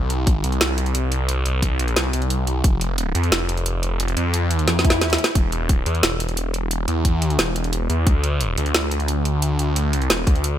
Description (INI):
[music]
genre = dark technical drum and bass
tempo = 177 BPM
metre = 4/4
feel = straight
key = unclear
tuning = A4 = 436 Hz
[part]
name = phased detuned saw bass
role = bass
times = 0.0-10.6 s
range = E1 to F2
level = -20 LUFS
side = equal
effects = phaser, tube saturation, sidechain pumping
[part]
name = drum and bass drum kit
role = drums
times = 0.1-10.5 s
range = hi-hat, snare drum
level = -22 LUFS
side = right 1 dB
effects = none
[part]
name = electronic kick drum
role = drums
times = 0.3-2.7, 4.8-8.1, 10.3 s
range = none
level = -18 LUFS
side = equal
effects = none
[part]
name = swell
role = sound effects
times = 4.8-5.4 s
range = none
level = -27 LUFS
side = left 2 dB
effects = none
[sound]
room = little or no reverb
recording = none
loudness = -18 LUFS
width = side -11 dB against mid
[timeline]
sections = 0.0-10.6 A section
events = drum fill 4.7-5.4; swell 4.8-5.4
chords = none